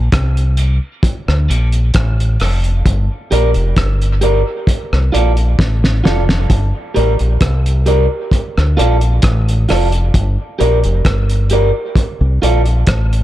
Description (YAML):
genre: dub reggae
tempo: 66 BPM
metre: 4/4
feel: straight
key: G minor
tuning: A4 = 440 Hz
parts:
  - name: deep dub fingered electric bass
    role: bass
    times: 0.0-13.2 s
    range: F1 to D2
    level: -13 LUFS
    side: equal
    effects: none
  - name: cloth-damped thuddy drum kit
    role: drums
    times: 0.1-13.2 s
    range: hi-hat, kick drum, rim click, snare drum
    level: -16 LUFS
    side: equal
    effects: none
  - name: electric guitar at the edge of break-up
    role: accompaniment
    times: 0.6-12.6 s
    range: F4 to D5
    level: -19 LUFS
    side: right 2 dB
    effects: high-pass filter, dub echo
room: small room ambience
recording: none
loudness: -12 LUFS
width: side -14 dB against mid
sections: 0.0-6.5 A section; 6.5-13.2 A section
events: drum fill 5.6-6.5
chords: 0.0 Gm; 1.0 Dm; 2.9 Gm; 4.7 Dm; 6.5 Gm; 8.3 Dm; 10.1 Gm; 12.0 Dm